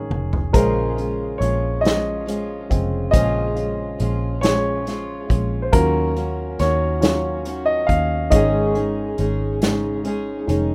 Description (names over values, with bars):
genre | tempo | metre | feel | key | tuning
six-eight pop ballad | 46 BPM (dotted quarters) | 6/8 | straight | Bb minor | A4 = 440 Hz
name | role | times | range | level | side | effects
warm grand piano | accompaniment | 0.0-10.7 s | Db3 to F5 | -25 LUFS | equal | none
vintage muted fingered electric bass | bass | 0.0-10.7 s | F1 to Eb2 | -26 LUFS | equal | none
unplugged drum kit | drums | 0.1-10.7 s | hi-hat, kick drum, snare drum, toms | -23 LUFS | equal | none
fingerpicked steel-string acoustic guitar | arpeggios | 0.5-10.7 s | Ab2 to Ab4 | -28 LUFS | equal | tape echo
room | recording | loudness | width
little or no reverb | rough home demo mix | -21 LUFS | mono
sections
0.0-10.7 A section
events
drum fill 0.0-0.5; grand piano solo 0.0-10.7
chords
0.0 Absus4; 0.5 Bbm7; 5.7 Ebm7; 8.3 Absus4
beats
| 0.54 1.84 | 3.13 4.43 | 5.73 7.02 | 8.32 9.62